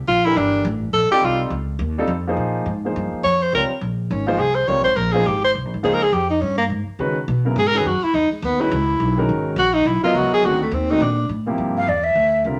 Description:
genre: modal jazz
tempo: 209 BPM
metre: 4/4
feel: swing 59% on 8ths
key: unclear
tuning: A4 = 440 Hz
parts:
  - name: upright bass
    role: bass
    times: 0.0-12.6 s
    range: G1 to Db3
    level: -26 LUFS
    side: equal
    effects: none
  - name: warm tenor saxophone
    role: second line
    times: 0.1-11.3 s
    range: Ab3 to Db5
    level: -20 LUFS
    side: equal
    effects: none
  - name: warm concert grand piano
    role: accompaniment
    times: 0.3-12.6 s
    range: C3 to Eb5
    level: -26 LUFS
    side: equal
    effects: none
  - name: breathy mellow concert flute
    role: melody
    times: 11.8-12.4 s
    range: D5 to F5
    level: -19 LUFS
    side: equal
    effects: none
room: moderate studio reverb, RT60 0.8 s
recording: none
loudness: -20 LUFS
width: mono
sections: 0.0-2.4 A section; 2.4-11.6 A section; 11.6-12.6 A section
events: tenor saxophone solo 0.0-11.6; flute solo 11.6-12.6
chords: 0.0 Gmadd9; 1.2 F7; 2.4 Bbm9; 7.0 Dbm9; 10.4 D7b9; 11.6 Gm11

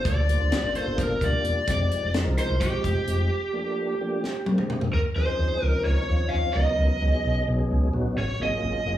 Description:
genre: electric jazz fusion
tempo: 259 BPM (eighths)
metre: 7/8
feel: straight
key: G minor, Eb minor from 4.9 s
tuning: A4 = 440 Hz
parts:
  - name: tonewheel organ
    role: accompaniment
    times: 0.0-9.0 s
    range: D3 to C5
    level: -30 LUFS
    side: left 1 dB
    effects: slow rotary speaker, overdrive, chorus vibrato
  - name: lead guitar through a small cranked amp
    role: melody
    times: 0.1-9.0 s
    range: G4 to F5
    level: -27 LUFS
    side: equal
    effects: overdrive
  - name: fingered electric bass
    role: bass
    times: 0.1-9.0 s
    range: E1 to Eb2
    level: -25 LUFS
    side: equal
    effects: none
  - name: tight funk drum kit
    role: drums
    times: 0.1-4.9 s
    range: hi-hat, kick drum, snare drum, toms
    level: -28 LUFS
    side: equal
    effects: none
room: wet large studio reverb, RT60 0.8 s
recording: band playing live in one room, small room reverb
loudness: -22 LUFS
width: side -12 dB against mid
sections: 0.0-4.9 A section; 4.9-9.0 B section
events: break 3.3-4.9; drum fill 4.2-4.9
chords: 0.0 Gm9; 1.7 Fm9; 3.3 Gm9; 4.2 Bb13; 4.9 Eb13sus4; 6.6 Db13sus4; 8.2 Ab13sus4

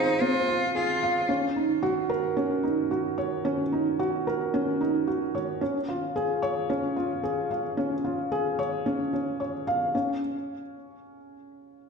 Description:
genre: electronica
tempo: 111 BPM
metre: 4/4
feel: straight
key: unclear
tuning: A4 = 444 Hz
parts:
  - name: rich cello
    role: melody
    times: 0.0-1.3 s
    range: Eb4 to F4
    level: -28 LUFS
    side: equal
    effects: ping-pong delay
  - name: felt-muted upright piano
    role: riff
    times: 0.0-11.9 s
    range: C4 to F5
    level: -26 LUFS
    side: right 1 dB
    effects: ping-pong delay
room: wet recital hall reverb, RT60 1.4 s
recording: nothing above 10.5 kHz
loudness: -25 LUFS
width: side -5 dB against mid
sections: 0.0-9.9 A section; 9.9-11.9 B section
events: none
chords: 0.0 Fm; 1.3 Ebm7; 5.6 Db; 9.9 N.C.

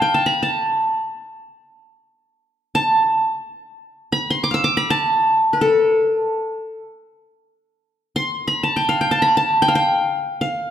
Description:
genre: Arabic maqam ensemble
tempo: free time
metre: none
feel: none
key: A maqam bayati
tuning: A4 = 444 Hz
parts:
  - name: qanun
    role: solo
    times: 0.0-10.7 s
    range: A4 to E6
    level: -16 LUFS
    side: equal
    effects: none
room: moderate recital hall reverb, RT60 1.6 s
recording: recorded in a church or concert hall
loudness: -16 LUFS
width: side -10 dB against mid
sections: 0.0-7.8 A section; 7.8-10.7 A section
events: none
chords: none

